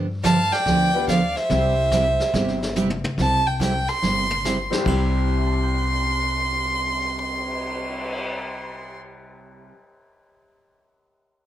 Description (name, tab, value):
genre	country, western swing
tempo	143 BPM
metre	4/4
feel	swing 66% on 8ths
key	C major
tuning	A4 = 438 Hz
part	picked steel-string acoustic guitar	accompaniment	0.0-9.7 s	C3 to G4	-25 LUFS	right 3 dB	none
part	upright bass	bass	0.0-9.7 s	G1 to G2	-26 LUFS	left 1 dB	none
part	dark fiddle	melody	0.2-9.0 s	E5 to C6	-24 LUFS	right 1 dB	plate reverb
part	clear fiddle	second line	0.2-2.8 s	C5 to F5	-31 LUFS	right 3 dB	none
part	vintage brush drum kit	drums	0.2-8.1 s	brushed snare drum, crash cymbal, cymbal swell, hi-hat, kick drum, snare drum, toms	-30 LUFS	left 1 dB	none
part	clear upright piano	accompaniment	0.9-9.9 s	C2 to C7	-31 LUFS	left 4 dB	none
room	moderate studio reverb, RT60 0.8 s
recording	none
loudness	-19 LUFS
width	side -12 dB against mid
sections	0.0-3.2 A section; 3.2-4.9 B section; 4.9-8.2 C section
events	drum fill 2.8-3.2, 4.0-4.9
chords	0.0 G7; 1.5 C